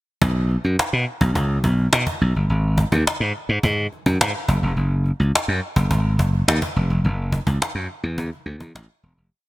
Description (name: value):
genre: polished 1980s jazz-funk pop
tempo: 106 BPM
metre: 4/4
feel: straight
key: unclear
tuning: A4 = 440 Hz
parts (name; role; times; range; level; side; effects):
- slap bass; bass; 0.2-9.3 s; E1 to B2; -19 LUFS; equal; none
- cajon; drums; 0.2-9.2 s; none; -23 LUFS; equal; none
room: light reverb, studio reverb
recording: bright 1980s-style digital production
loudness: -18 LUFS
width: side -18 dB against mid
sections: 0.2-9.3 verse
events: fade-out 7.0-9.3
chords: none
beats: | 0.21 0.78 1.35 1.92 | 2.49 3.06 3.63 4.20 | 4.76 5.33 5.90 6.47 | 7.04 7.61 8.18 8.74